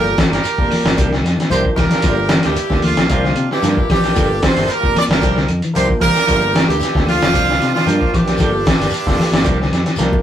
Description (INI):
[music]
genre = afrobeat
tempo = 113 BPM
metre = 4/4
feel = straight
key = G dorian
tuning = A4 = 440 Hz
[part]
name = brilliant horn section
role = melody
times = 0.0-10.2 s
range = F4 to D5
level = -19 LUFS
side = right 2 dB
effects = none
[part]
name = brilliant trumpet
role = second line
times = 0.0-10.2 s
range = D4 to Bb4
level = -30 LUFS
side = equal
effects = none
[part]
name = clear trombone section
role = second line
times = 0.0-10.2 s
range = F2 to D3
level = -30 LUFS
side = equal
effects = none
[part]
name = overdriven tine electric piano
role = accompaniment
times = 0.0-10.2 s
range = Bb3 to Bb4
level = -24 LUFS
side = left 1 dB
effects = phaser
[part]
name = semi-hollow electric guitar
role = arpeggios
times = 0.0-10.2 s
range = D3 to F3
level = -24 LUFS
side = left 2 dB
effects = none
[part]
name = clean electric guitar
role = stabs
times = 0.0-10.2 s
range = F3 to G4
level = -25 LUFS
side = right 2 dB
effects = none
[part]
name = fingered electric bass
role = bass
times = 0.0-10.1 s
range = F1 to C3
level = -20 LUFS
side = equal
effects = none
[part]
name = lo-fi sampler-style drum kit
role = drums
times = 0.2-10.2 s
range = hi-hat, kick drum, snare drum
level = -17 LUFS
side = equal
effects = none
[part]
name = congas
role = percussion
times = 0.2-10.2 s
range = none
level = -25 LUFS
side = left 1 dB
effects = none
[part]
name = shekere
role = percussion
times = 0.2-10.1 s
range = none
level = -30 LUFS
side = left 1 dB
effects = none
[part]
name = claves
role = percussion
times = 0.3-9.9 s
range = none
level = -37 LUFS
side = left 4 dB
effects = none
[sound]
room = wet studio reverb, RT60 0.6 s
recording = rough rehearsal-room recording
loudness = -13 LUFS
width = side -10 dB against mid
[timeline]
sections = 0.0-10.2 A section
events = drum fill 1.4-2.0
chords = 0.0 Gm7; 1.0 C9sus4; 2.0 Gm7; 3.1 C9sus4; 4.2 Gm7; 5.2 C9sus4; 6.3 Gm7; 7.3 C9sus4; 8.4 Gm7; 9.5 C9sus4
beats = 0.44 0.97 1.51 | 2.04 2.57 3.10 3.63 | 4.16 4.69 5.22 5.75 | 6.28 6.81 7.34 7.87 | 8.40 8.93 9.46 9.99